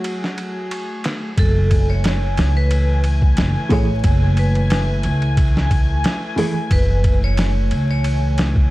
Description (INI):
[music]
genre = trip hop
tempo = 90 BPM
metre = 4/4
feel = swing 54% on 16ths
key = F# minor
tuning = A4 = 440 Hz
[part]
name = felt-muted upright piano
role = accompaniment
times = 0.0-6.5 s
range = E3 to G#4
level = -22 LUFS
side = right 1 dB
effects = tremolo
[part]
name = dark studio string section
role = sustained chords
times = 0.0-8.7 s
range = E3 to G#5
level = -26 LUFS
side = left 1 dB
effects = vintage 12-bit sampler grit
[part]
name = boom bap sampler-style drum kit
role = drums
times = 0.0-8.7 s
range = hi-hat, kick drum, ride cymbal, snare drum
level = -20 LUFS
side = equal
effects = high-pass filter on cymbals, high-pass filter on snare, high-pass filter on kick, high-pass filter on hats
[part]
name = vibraphone with hard mallets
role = melody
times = 1.4-8.3 s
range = A4 to C#5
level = -27 LUFS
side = right 1 dB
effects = tape echo
[part]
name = upright bass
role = bass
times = 1.4-8.7 s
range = F#1 to C#2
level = -17 LUFS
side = equal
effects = none
[sound]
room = studio reverb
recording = dark, warm production, vinyl crackle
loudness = -15 LUFS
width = side -18 dB against mid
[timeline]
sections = 0.0-1.4 A section; 1.4-8.7 B section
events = none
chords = 0.0 F#m9